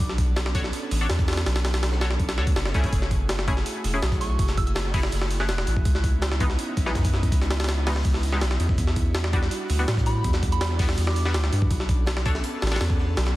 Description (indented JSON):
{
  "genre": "drum and bass, jungle",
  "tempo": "164 BPM",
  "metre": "4/4",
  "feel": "straight",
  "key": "F# minor",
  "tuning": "A4 = 441 Hz",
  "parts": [
    { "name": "airy breathy pad", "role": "sustained chords", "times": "0.0-13.4 s", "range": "G3 to A4", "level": "-34 LUFS", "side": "right 1 dB", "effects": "chorus" },
    { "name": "soft dub sub bass", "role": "bass", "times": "0.0-13.4 s", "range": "E1 to A2", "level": "-24 LUFS", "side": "equal", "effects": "tube saturation" },
    { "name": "crunchy breakbeat drum kit", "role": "drums", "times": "0.0-13.3 s", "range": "hi-hat, shaker, snare drum", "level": "-41 LUFS", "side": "left 1 dB", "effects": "none" },
    { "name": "jungle sampler-style drum kit", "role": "drums", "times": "0.0-13.3 s", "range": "hi-hat, kick drum, snare drum", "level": "-25 LUFS", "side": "equal", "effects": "none" },
    { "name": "band-passed chord stab", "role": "stabs", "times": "0.5-12.8 s", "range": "E3 to C#5", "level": "-32 LUFS", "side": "left 2 dB", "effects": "chorus, dub echo" },
    { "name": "soft synth bell", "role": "melody", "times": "4.2-5.8, 10.1-11.4 s", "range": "B5 to F#6", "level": "-36 LUFS", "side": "right 2 dB", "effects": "chorus, phaser, dub echo" }
  ],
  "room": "small room ambience",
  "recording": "dense, heavily limited modern master, vinyl crackle",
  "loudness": "-21 LUFS",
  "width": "side -17 dB against mid",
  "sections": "0.0-13.4 A section",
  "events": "none",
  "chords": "0.0 Bm9; 2.9 F#m9; 5.9 C#m9; 8.8 Em9; 11.7 Bm9"
}